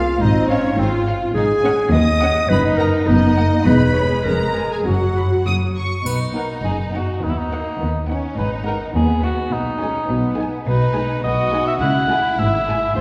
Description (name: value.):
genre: cinematic, playful, whimsical film cue.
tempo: 104 BPM.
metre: 2/4.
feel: straight.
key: B major.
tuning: A4 = 441 Hz.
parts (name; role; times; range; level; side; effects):
rich studio violin section; melody; 0.0-12.9 s; C#5 to D#6; -34 LUFS; equal; none.
rich studio violin section; second line; 0.0-13.0 s; A#3 to D#6; -29 LUFS; equal; none.
warm clarinet; second line; 0.0-5.4 s; C4 to D#5; -22 LUFS; equal; none.
rich studio cello section; bass; 0.0-13.0 s; D#2 to D#3; -25 LUFS; equal; none.
rich studio double bass section; bass; 0.0-13.0 s; E1 to D#2; -25 LUFS; equal; none.
rich studio viola section; accompaniment; 0.2-12.9 s; F#3 to F4; -26 LUFS; equal; none.
warm cor anglais; second line; 6.1-13.0 s; D#4 to F#5; -24 LUFS; equal; none.
triangle; percussion; 6.1-7.2 s; none; -38 LUFS; equal; none.
room: wet scoring stage reverb, RT60 1.8 s.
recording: heard from further back in the room.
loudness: -18 LUFS.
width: mono.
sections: 0.0-6.1 A section; 6.1-13.0 B section.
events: none.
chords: 0.2 Fm/Ab; 1.4 G#5; 2.5 D#m/F#; 3.7 C#m7/E; 4.3 Fmadd11; 4.9 B5/F#; 6.1 B; 7.2 B/D#; 8.4 G#m7; 9.5 G#m/B; 11.8 C#m.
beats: | 0.21 0.79 | 1.35 1.93 | 2.50 3.08 | 3.67 4.26 | 4.86 5.46 | 6.05 6.64 | 7.22 7.80 | 8.37 8.95 | 9.52 10.09 | 10.67 11.24 | 11.81 12.39 | 12.97.